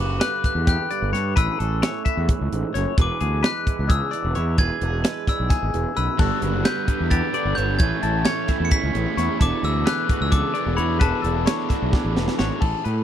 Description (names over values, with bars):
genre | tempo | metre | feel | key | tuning
math rock and midwest emo | 261 BPM (eighths) | 7/8 | straight | unclear | A4 = 440 Hz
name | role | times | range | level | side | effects
glockenspiel with hard plastic mallets | melody | 0.0-12.4 s | A5 to C#7 | -27 LUFS | left 2 dB | none
twangy electric guitar | accompaniment | 0.0-13.0 s | E2 to A4 | -30 LUFS | right 12 dB | none
twangy electric guitar | arpeggios | 0.0-13.0 s | F#4 to E5 | -29 LUFS | left 12 dB | phaser
fuzz fingered electric bass | bass | 0.0-13.0 s | E1 to A2 | -24 LUFS | equal | overdrive
crisp fusion drum kit | drums | 0.2-13.0 s | crash cymbal, hi-hat, kick drum, snare drum | -21 LUFS | equal | none
overdriven electric guitar | riff | 6.2-12.6 s | G2 to G#4 | -28 LUFS | right 1 dB | none
room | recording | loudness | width
studio reverb | dry, close 1970s-style studio recording | -19 LUFS | side -10 dB against mid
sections
0.0-12.6 A section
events
drum fill 11.9-12.6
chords
0.0 Gmaj7; 1.4 Amaj9; 3.0 E7; 6.2 Gmaj9; 7.8 Amaj9; 9.4 E9sus4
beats
0.21 0.44 0.67 0.90 1.13 | 1.36 1.59 1.82 2.05 2.28 2.51 2.74 | 2.97 3.20 3.43 3.66 3.89 4.12 4.35 | 4.58 4.81 5.04 5.27 5.50 5.73 5.96 | 6.19 6.42 6.65 6.88 7.11 7.34 7.57 | 7.79 8.02 8.25 8.48 8.71 8.94 9.17 | 9.40 9.63 9.86 10.09 10.32 10.55 10.78 | 11.01 11.23 11.46 11.70 11.93 12.15 12.38 | 12.62 12.85